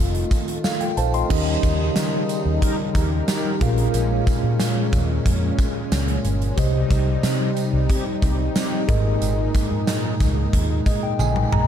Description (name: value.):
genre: 1980s-style pop.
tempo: 91 BPM.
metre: 4/4.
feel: straight.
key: Bb dorian.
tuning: A4 = 440 Hz.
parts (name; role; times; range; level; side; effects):
mellow tine electric piano; accompaniment; 0.0-11.7 s; Ab2 to C6; -24 LUFS; equal; medium stereo tremolo.
brassy analog pad; sustained chords; 0.0-11.7 s; Bb2 to F4; -26 LUFS; left 1 dB; chorus.
vintage muted fingered electric bass; bass; 0.0-11.7 s; F1 to Eb3; -23 LUFS; equal; none.
gated 80s drum kit; drums; 0.1-11.7 s; crash cymbal, hi-hat, kick drum, snare drum, tambourine, toms; -23 LUFS; equal; none.
tambourine; percussion; 0.3-11.3 s; none; -41 LUFS; right 8 dB; none.
mellow synth brass; stabs; 2.6-3.6, 7.9-8.8 s; C4 to Bb4; -33 LUFS; equal; chorus, diffuse ambient delay.
room: light reverb.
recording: none.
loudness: -18 LUFS.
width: side -9 dB against mid.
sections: 0.0-1.3 A section; 1.3-11.7 B section.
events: tine electric piano fill 10.5-11.7; drum fill 11.2-11.7.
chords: 0.0 F7; 1.3 Eb7; 3.6 Bbm7; 6.6 Cm; 8.9 Absus2.